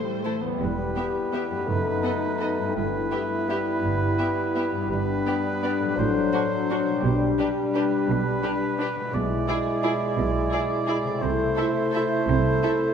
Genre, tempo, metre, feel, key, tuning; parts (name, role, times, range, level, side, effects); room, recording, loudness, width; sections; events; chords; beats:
classical, orchestral ballroom waltz; 170 BPM; 3/4; uneven beats, rubato; E minor, A minor from 9.1 s; A4 = 440 Hz
rich chamber violin section; melody; 0.0-12.7 s; B4 to E5; -39 LUFS; left 3 dB
warm chamber viola section; accompaniment; 0.0-12.7 s; G3 to E4; -33 LUFS; right 3 dB
concert harp; arpeggios; 0.0-12.9 s; E2 to E5; -31 LUFS; left 7 dB
dark chamber violin section; second line; 0.2-12.7 s; E4 to A4; -37 LUFS; left 2 dB
warm clarinet; second line; 0.6-12.9 s; D4 to E4; -32 LUFS; left 1 dB
warm oboe; second line; 0.6-12.9 s; B4 to D5; -30 LUFS; right 2 dB
mellow bassoon; accompaniment; 0.6-12.9 s; F#3 to A3; -30 LUFS; right 1 dB
warm French horn section; sustained chords; 0.6-12.9 s; F#3 to G4; -29 LUFS; left 3 dB
rich chamber double bass section; bass; 0.6-12.6 s; E1 to C2; -30 LUFS; right 3 dB
rich studio cello section; bass; 0.6-12.6 s; E2 to C3; -32 LUFS; right 5 dB
wet scoring stage reverb, RT60 2.0 s; -22 LUFS; side -7 dB against mid
0.6-12.9 A section
0.0 Am; 0.6 Em; 1.7 B7/F#; 2.8 Em/G; 4.9 G; 6.0 D7/A; 7.0 G/B; 9.1 E7/B; 11.2 Am/C
0.24 | 0.61 0.96 1.33 | 1.68 2.04 2.41 | 2.75 3.11 3.48 | 3.83 4.19 4.55 | 4.90 5.26 5.63 | 5.98 6.33 6.70 | 7.04 7.39 7.75 | 8.09 8.44 8.80 | 9.14 9.48 9.84 | 10.18 10.53 10.88 | 11.22 11.57 11.94 | 12.28 12.63